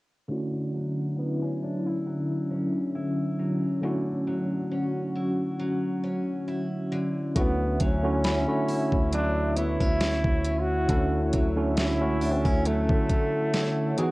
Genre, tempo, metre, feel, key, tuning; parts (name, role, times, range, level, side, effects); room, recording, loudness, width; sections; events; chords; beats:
contemporary R&B; 68 BPM; 4/4; swing 54% on 16ths; D major; A4 = 440 Hz
tine electric piano; accompaniment; 0.3-14.1 s; D3 to C#5; -30 LUFS; right 1 dB; medium stereo tremolo, low-pass filter
warm analog pad; sustained chords; 0.9-14.1 s; D3 to F#5; -30 LUFS; equal; chorus, tremolo, low-pass filter
picked steel-string acoustic guitar; arpeggios; 0.3-14.1 s; D3 to E4; -36 LUFS; equal; low-pass filter
clear trombone; melody; 7.4-14.1 s; A3 to F#4; -29 LUFS; equal
long sustained 808-style bass; bass; 7.4-13.9 s; C#2 to D3; -30 LUFS; equal
smooth R&B drum kit; drums; 7.4-14.1 s; hi-hat, kick drum, snare drum; -26 LUFS; equal; cassette tape
soft synth bell; texture; 8.2-11.7 s; B5; -41 LUFS; left 2 dB; chorus, analog delay
light reverb, digital ambience; home recording on cassette; -24 LUFS; side -21 dB against mid
0.3-7.4 A section; 7.4-14.1 B section
filter sweep 0.3-7.4
0.3 Dmaj9
| 0.30 1.18 2.06 2.95 | 3.83 4.71 5.59 6.48 | 7.36 8.24 9.12 10.01 | 10.89 11.77 12.65 13.54